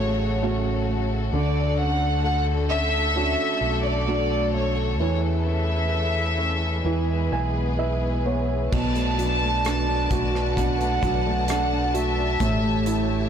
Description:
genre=pop ballad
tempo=65 BPM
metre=4/4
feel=straight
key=unclear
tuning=A4 = 438 Hz
part: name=warm studio violin section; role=melody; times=0.0-13.3 s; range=C#5 to A5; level=-27 LUFS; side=right 1 dB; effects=none
part: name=warm grand piano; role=accompaniment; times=0.0-13.3 s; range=B2 to G#5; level=-28 LUFS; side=right 7 dB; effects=none
part: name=warm studio string section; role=sustained chords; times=0.0-13.3 s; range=C#3 to A5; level=-30 LUFS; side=left 2 dB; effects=none
part: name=flamenco guitar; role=arpeggios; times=0.0-13.3 s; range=A2 to A4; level=-30 LUFS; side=left 6 dB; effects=tape echo
part: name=fingered electric bass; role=bass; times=0.0-13.3 s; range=A1 to E2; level=-26 LUFS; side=equal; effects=none
part: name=modern studio drum kit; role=drums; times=8.7-13.1 s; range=crash cymbal, hi-hat, kick drum, rim click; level=-29 LUFS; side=equal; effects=soft clipping on snare
room=light reverb, small room ambience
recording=blown-out, overdriven recording, overdrive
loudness=-21 LUFS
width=side -8 dB against mid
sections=0.0-8.7 A section; 8.7-13.3 B section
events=grand piano fill 6.8-8.7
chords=0.0 F#m; 1.3 Dmaj7; 5.0 A/E; 6.8 E; 8.7 Bm7; 12.4 A7

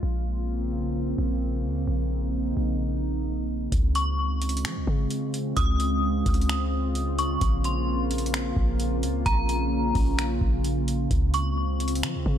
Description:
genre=hip hop, atmospheric cloud-rap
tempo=130 BPM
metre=4/4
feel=half-time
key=Bb minor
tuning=A4 = 441 Hz
part: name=warbly tape-like pad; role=sustained chords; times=0.0-12.4 s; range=Db3 to F4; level=-28 LUFS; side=right 1 dB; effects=chorus, built-in reverb, sidechain pumping
part: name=warm 808-style bass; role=bass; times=0.0-12.4 s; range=Bb1 to F3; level=-27 LUFS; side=equal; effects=none
part: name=booming analog drum machine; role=drums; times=3.7-12.4 s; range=finger snaps, hi-hat, kick drum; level=-27 LUFS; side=equal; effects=none
part: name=metallic FM bell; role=melody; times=4.0-11.6 s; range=Bb5 to Eb6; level=-30 LUFS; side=equal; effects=chorus, phaser, low-pass filter, ping-pong delay
room=little or no reverb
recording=none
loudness=-23 LUFS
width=side -10 dB against mid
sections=0.0-3.7 A section; 3.7-12.4 B section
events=none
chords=0.0 Bbmadd9; 3.7 Dbmaj7; 7.4 Bbmadd9; 11.1 Dbmaj7

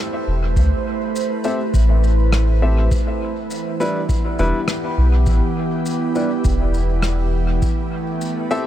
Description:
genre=ambient dub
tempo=102 BPM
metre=4/4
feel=swing 54% on 16ths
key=A minor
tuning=A4 = 438 Hz
part: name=soft additive organ-like pad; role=sustained chords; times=0.0-8.7 s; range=E3 to C5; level=-23 LUFS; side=right 2 dB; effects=ensemble chorus, built-in reverb
part: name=soft dub sub bass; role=bass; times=0.3-7.6 s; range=E1 to D2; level=-16 LUFS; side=equal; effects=none
part: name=electronic kick drum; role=drums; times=0.6-7.8 s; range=none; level=-21 LUFS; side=equal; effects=overdrive
part: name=shaker and rim click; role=drums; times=0.6-8.6 s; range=none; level=-31 LUFS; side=left 1 dB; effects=dub echo
part: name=warm upright piano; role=stabs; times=1.4-8.7 s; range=G3 to E5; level=-26 LUFS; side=left 2 dB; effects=low-pass filter, dub echo
room=little or no reverb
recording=none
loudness=-16 LUFS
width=side -12 dB against mid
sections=0.0-8.7 A section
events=none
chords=0.0 Am; 2.9 Em; 7.6 Am7

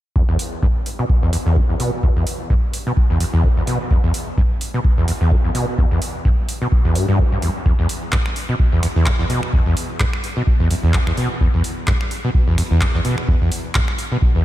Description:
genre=acid house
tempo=128 BPM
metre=4/4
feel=swing 56% on 16ths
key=E minor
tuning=A4 = 442 Hz
part: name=overdriven acid bass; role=riff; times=0.2-14.4 s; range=E2 to B2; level=-19 LUFS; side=equal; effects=wide subtle chorus, sidechain pumping, ping-pong delay
part: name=electronic kick drum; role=drums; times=0.2-14.3 s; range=none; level=-18 LUFS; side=equal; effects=none
part: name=electro analog drum machine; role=drums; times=0.4-14.1 s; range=finger snaps, handclaps, hi-hat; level=-26 LUFS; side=equal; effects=none
room=light reverb, digital ambience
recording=none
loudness=-16 LUFS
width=side -14 dB against mid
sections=0.2-14.4 A section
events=filter sweep on acid bass 0.2-14.4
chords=none

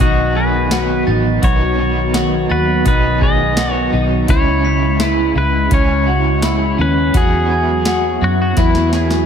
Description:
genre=dream pop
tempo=84 BPM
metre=4/4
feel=straight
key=unclear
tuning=A4 = 438 Hz
part: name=pedal steel guitar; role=melody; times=0.0-9.3 s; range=E4 to D#5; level=-20 LUFS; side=left 1 dB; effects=analog delay
part: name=crunchy overdriven guitar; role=accompaniment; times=0.0-9.3 s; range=B2 to B4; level=-23 LUFS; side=right 5 dB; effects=tremolo, analog chorus, analog delay
part: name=hollow soft pad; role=sustained chords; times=0.0-9.3 s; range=C#3 to F#4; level=-20 LUFS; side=equal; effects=ensemble chorus
part: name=clean electric guitar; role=arpeggios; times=0.0-9.3 s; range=C#4 to G#4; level=-20 LUFS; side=left 3 dB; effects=lush chorus, analog delay
part: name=vintage muted fingered electric bass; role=bass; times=0.0-9.3 s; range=A1 to F#2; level=-18 LUFS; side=equal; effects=none
part: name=booming analog drum machine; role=drums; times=0.0-9.3 s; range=hi-hat, kick drum, snare drum, tambourine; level=-17 LUFS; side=equal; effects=none
part: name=glockenspiel with soft plastic mallets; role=texture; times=0.0-8.6 s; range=G#6 to B6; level=-31 LUFS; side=right 4 dB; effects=analog delay
room=light reverb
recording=echo-heavy mix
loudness=-12 LUFS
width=side -8 dB against mid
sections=0.0-9.3 A section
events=drum fill 8.6-9.3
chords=0.0 B; 4.3 C#m; 7.1 Esus2

